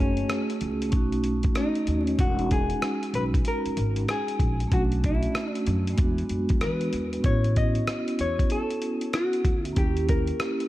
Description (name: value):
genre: hip hop, jazz-hop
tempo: 95 BPM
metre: 4/4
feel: swing 64% on 16ths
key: unclear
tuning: A4 = 438 Hz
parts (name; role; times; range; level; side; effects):
- vintage hollow-body jazz guitar; melody; 0.0-10.7 s; Db4 to Eb5; -30 LUFS; left 2 dB; tape echo
- vibraphone with medium mallets; accompaniment; 0.0-10.7 s; G#3 to Ab4; -28 LUFS; right 2 dB; none
- upright bass; bass; 0.0-10.3 s; E1 to E3; -28 LUFS; equal; none
- lo-fi sampler-style drum kit; drums; 0.2-10.7 s; hi-hat, kick drum, rim click; -27 LUFS; equal; none
room: light reverb, studio reverb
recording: dark, warm production, vinyl crackle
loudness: -23 LUFS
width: side -16 dB against mid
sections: 0.0-10.7 A section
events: none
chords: 0.0 Gbmadd9; 0.9 B7; 2.2 Emaj13; 4.7 Bm9; 6.0 E9; 7.2 A69; 9.8 Eb7b9